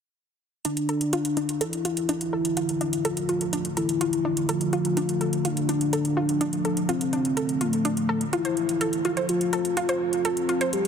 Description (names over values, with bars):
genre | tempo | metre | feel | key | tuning
melodic techno | 125 BPM | 4/4 | straight | D minor | A4 = 443 Hz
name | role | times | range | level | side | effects
soft octave-layered synth lead | melody | 0.6-10.9 s | A3 to G4 | -25 LUFS | left 1 dB | chorus, dub echo
deep dark ambient pad | sustained chords | 2.3-10.9 s | D3 to A4 | -30 LUFS | equal | chorus, built-in reverb
analog pluck | arpeggios | 0.6-10.7 s | D4 to C5 | -30 LUFS | right 1 dB | chorus, dub echo
electronic hi-hat | drums | 0.6-10.9 s | none | -33 LUFS | right 1 dB | overdrive
room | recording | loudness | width
moderate huge ambient reverb, RT60 4.9 s | dense, heavily limited modern master | -23 LUFS | side -7 dB against mid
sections
0.6-10.9 A section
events
filter sweep on synth arpeggio sound 0.6-10.9; filter sweep on soft synth lead 0.6-10.9; filter sweep on ambient pad 0.6-10.9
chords
0.6 Dm; 8.3 F